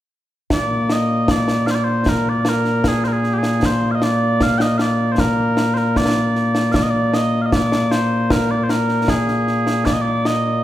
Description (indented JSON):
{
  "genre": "scottish traditional, Scottish pipe music",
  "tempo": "77 BPM",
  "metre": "2/4",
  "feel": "straight",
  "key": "Bb mixolydian",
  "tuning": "A4 = 437 Hz",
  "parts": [
    { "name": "mellow small bagpipes", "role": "melody", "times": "0.5-10.6 s", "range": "Bb2 to G5", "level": "-16 LUFS", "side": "equal", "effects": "none" },
    { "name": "concert snare drum and concert bass drum", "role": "drums", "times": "0.5-10.4 s", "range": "none", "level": "-22 LUFS", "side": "equal", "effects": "none" }
  ],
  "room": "wet recital hall reverb, RT60 1.5 s",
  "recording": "heard from further back in the room",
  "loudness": "-15 LUFS",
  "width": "side -13 dB against mid",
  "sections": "0.5-10.6 A section",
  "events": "none",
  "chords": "none"
}